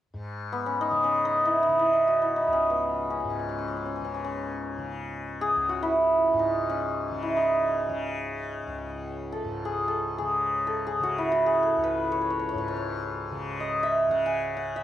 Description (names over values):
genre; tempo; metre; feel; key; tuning
indian classical; free time; none; none; C# raga darbari; A4 = 438 Hz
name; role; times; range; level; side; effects
tanpura; drone; 0.1-14.8 s; C#2 to C#3; -34 LUFS; left 2 dB; none
santur; melody; 0.5-14.8 s; B3 to G#5; -24 LUFS; equal; analog delay
room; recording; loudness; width
moderate studio reverb, RT60 0.5 s; none; -24 LUFS; side -12 dB against mid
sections
0.1-14.8 A section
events
none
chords
none